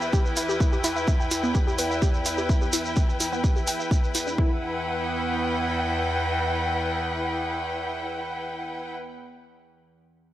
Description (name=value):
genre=melodic techno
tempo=127 BPM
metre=4/4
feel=straight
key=E minor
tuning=A4 = 440 Hz
part: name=wide unison pluck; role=arpeggios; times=0.0-4.6 s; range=B3 to G5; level=-30 LUFS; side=equal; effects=vintage 12-bit sampler grit, sidechain pumping, analog delay
part: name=overtone-sweeping drone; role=drone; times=0.0-9.0 s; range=E2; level=-33 LUFS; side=right 1 dB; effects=chorus, built-in reverb, sidechain pumping
part: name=shekere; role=percussion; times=0.0-4.4 s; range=none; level=-32 LUFS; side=right 2 dB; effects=none
part: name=rich studio string section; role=texture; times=0.0-8.9 s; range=E4 to G5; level=-27 LUFS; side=left 1 dB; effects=sidechain pumping
part: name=electronic kick drum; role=drums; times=0.1-4.5 s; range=none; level=-22 LUFS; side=equal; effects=none
part: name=electronic hi-hat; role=drums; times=0.4-4.2 s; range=none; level=-30 LUFS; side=left 1 dB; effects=none
room=light reverb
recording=dry, gritty hardware recording, transformer saturation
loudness=-23 LUFS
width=side -13 dB against mid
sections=0.0-4.4 A section; 4.4-8.2 B section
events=none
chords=0.0 Em